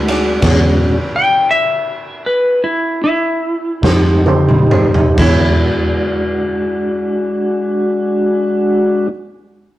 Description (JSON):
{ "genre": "slow blues", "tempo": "42-59 BPM (dotted quarters)", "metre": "12/8", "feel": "straight", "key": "E mixolydian", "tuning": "A4 = 440 Hz", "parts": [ { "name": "clean lap steel guitar", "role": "melody", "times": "0.0-9.1 s", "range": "E4 to G5", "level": "-16 LUFS", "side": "left 1 dB", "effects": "none" }, { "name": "mellow tonewheel organ", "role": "sustained chords", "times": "0.0-9.1 s", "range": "G#3 to G4", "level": "-16 LUFS", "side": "equal", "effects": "slow rotary speaker" }, { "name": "vintage muted fingered electric bass", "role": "bass", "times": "0.0-9.1 s", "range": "D2 to F2", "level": "-16 LUFS", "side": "equal", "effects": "none" }, { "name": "warm upright piano", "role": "accompaniment", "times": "0.1-9.1 s", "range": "D4 to D5", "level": "-22 LUFS", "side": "right 2 dB", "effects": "none" }, { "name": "raw garage drum kit", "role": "drums", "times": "0.1-5.4 s", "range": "crash cymbal, kick drum, ride cymbal, snare drum, toms", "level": "-16 LUFS", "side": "equal", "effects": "none" } ], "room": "moderate stone room reverb, RT60 1.2 s", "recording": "rough rehearsal-room recording, warm saturation", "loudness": "-12 LUFS", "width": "side -15 dB against mid", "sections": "0.0-5.2 A section; 5.2-9.8 B section", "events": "slowing down 0.0-5.2; drum fill 3.8-5.2", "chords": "0.4 E13; 3.8 F9; 5.2 E13" }